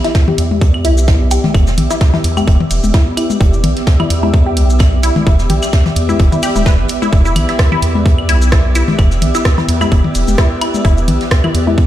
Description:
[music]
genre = minimal techno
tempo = 129 BPM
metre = 4/4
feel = swing 55% on 16ths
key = E minor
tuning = A4 = 442 Hz
[part]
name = resonant blip pluck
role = riff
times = 0.0-11.7 s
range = E4 to B4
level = -20 LUFS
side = left 1 dB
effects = phaser, sidechain pumping, dub echo
[part]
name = garage drum kit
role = drums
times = 0.0-11.6 s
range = hi-hat, rim click, shaker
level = -23 LUFS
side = right 1 dB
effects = overdrive
[part]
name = jazz brush drum kit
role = drums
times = 0.0-11.9 s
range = hi-hat, snare drum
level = -28 LUFS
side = right 2 dB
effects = sidechain pumping on hats, high-pass filter on hats, high-pass filter on snare, high-pass filter on room
[part]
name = granular cloud pad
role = texture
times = 0.0-11.9 s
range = B3 to E5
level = -20 LUFS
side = equal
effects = built-in reverb, sidechain pumping
[part]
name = electronic kick drum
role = drums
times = 0.1-11.9 s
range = none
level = -10 LUFS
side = equal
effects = overdrive
[part]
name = electronic toms and claves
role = percussion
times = 0.3-11.8 s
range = none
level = -19 LUFS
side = left 4 dB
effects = dub echo
[part]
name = round analog bass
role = bass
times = 0.4-11.9 s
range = D1 to E2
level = -14 LUFS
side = equal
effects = sidechain pumping
[sound]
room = light reverb, digital ambience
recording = played on a big sound system in a bare room, stone room reverb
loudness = -10 LUFS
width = side -13 dB against mid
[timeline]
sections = 0.0-11.9 A section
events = none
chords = 0.0 Em7

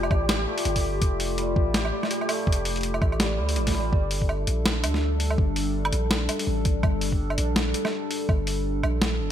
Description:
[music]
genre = half-time drum and bass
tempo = 165 BPM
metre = 4/4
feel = swing 58% on 16ths, half-time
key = G minor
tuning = A4 = 440 Hz
[part]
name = dark analog pad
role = sustained chords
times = 0.0-9.3 s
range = G3 to A4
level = -30 LUFS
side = left 1 dB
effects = chorus, phaser, sidechain pumping
[part]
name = santur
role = arpeggios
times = 0.0-6.7 s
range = G3 to G4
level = -32 LUFS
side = equal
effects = vintage 12-bit sampler grit, digital delay
[part]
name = long sustained 808-style bass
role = bass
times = 0.0-9.3 s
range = F1 to D2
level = -27 LUFS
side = equal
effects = none
[part]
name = boom bap sampler-style drum kit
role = drums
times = 0.0-9.1 s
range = hi-hat, snare drum, woodblock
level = -28 LUFS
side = equal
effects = none
[part]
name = electronic kick drum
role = drums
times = 0.1-8.4 s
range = none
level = -23 LUFS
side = equal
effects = none
[sound]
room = light reverb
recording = bright 1980s-style digital production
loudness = -22 LUFS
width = side -10 dB against mid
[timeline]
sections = 0.0-3.9 A section; 3.9-9.3 A section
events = drop 0.0-3.9, 3.9-9.3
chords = 0.0 Fadd9; 3.9 Gm

